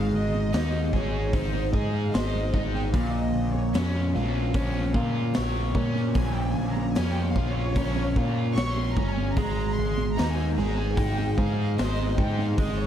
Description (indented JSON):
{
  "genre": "psychedelic rock",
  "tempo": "75 BPM",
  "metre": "4/4",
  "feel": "straight",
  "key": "Bb dorian",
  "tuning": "A4 = 441 Hz",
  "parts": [
    { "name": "rich studio string section", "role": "sustained chords", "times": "0.0-12.9 s", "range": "C5 to Db6", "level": "-35 LUFS", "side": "right 3 dB", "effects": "none" },
    { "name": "overdriven electric guitar", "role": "riff", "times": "0.0-12.9 s", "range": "Bb2 to Db5", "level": "-29 LUFS", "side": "equal", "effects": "harmonic tremolo" },
    { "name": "growling picked electric bass", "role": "bass", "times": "0.0-12.9 s", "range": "G1 to Bb2", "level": "-27 LUFS", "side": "equal", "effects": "overdrive" },
    { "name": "congas", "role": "percussion", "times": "0.1-12.6 s", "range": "none", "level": "-36 LUFS", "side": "right 9 dB", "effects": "none" },
    { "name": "raw garage drum kit", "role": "drums", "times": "0.5-12.8 s", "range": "hi-hat, kick drum, snare drum", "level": "-29 LUFS", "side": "equal", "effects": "none" }
  ],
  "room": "small room ambience",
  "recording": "none",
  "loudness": "-23 LUFS",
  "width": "side -10 dB against mid",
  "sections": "0.0-12.9 A section",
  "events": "string section solo 0.0-12.9",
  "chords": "0.0 Ab; 2.9 Bbm; 9.4 Ab"
}